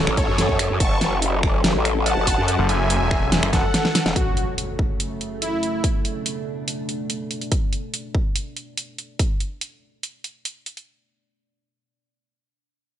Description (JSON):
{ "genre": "heavy wobble dubstep", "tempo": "143 BPM", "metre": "4/4", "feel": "half-time", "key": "F# minor", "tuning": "A4 = 439 Hz", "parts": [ { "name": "soft supersaw", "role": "melody", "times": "0.0-5.8 s", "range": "E4 to C#6", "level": "-26 LUFS", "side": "equal", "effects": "digital delay" }, { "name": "evolving wavetable pad", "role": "sustained chords", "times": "0.0-7.5 s", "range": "F#2 to A4", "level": "-29 LUFS", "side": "left 1 dB", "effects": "chorus, built-in reverb, sidechain pumping" }, { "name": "snarling distorted saw bass", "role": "bass", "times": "0.0-0.1, 2.6-3.6 s", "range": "E1 to F#1", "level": "-22 LUFS", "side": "equal", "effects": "distortion, overdrive" }, { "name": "growl bass", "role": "bass", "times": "0.1-4.1 s", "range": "E1 to F#2", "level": "-22 LUFS", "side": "equal", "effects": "chorus, overdrive" }, { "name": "dubstep drum kit", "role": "drums", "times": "0.1-10.9 s", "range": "finger snaps, hi-hat, snare drum", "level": "-23 LUFS", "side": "right 1 dB", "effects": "studio reverb" }, { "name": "electronic kick drum", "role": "drums", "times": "0.2-9.3 s", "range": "none", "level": "-22 LUFS", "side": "equal", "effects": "studio reverb" }, { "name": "impact", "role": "sound effects", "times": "4.2-5.8 s", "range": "none", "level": "-31 LUFS", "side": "equal", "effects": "none" } ], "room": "little or no reverb", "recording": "nothing above 10.8 kHz", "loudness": "-20 LUFS", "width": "side -10 dB against mid", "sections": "0.0-4.2 A section; 4.2-10.9 B section; 10.9-13.0 C section", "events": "drop 0.0-4.2; drum fill 3.5-4.2; kick drops out 3.7-4.2; impact 4.2-5.8", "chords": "0.0 F#m; 5.8 Bm7; 7.5 N.C.", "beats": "0.38 | 0.80 1.22 1.64 2.06 | 2.48 2.90 3.32 3.74 | 4.16 4.58 5.00 5.42 | 5.84 6.26 6.68 7.10 | 7.52 7.94 8.36 8.78 | 9.19 9.61 10.03 10.45" }